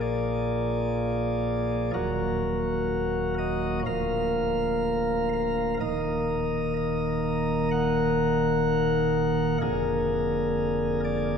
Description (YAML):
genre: classical, chorale-style piece for pipe organ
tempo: 63 BPM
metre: 4/4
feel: rubato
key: Eb minor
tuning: A4 = 439 Hz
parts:
  - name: chamber organ, sparkling flutes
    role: solo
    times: 0.0-11.4 s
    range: D1 to Gb5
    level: -24 LUFS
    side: equal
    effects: none
room: wet church reverb, RT60 2.6 s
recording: none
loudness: -24 LUFS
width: side -7 dB against mid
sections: 0.0-11.4 A section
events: none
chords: 0.0 Bb7; 1.9 Ebm; 3.9 Bb/D; 5.8 Ebm; 9.6 Bb7/F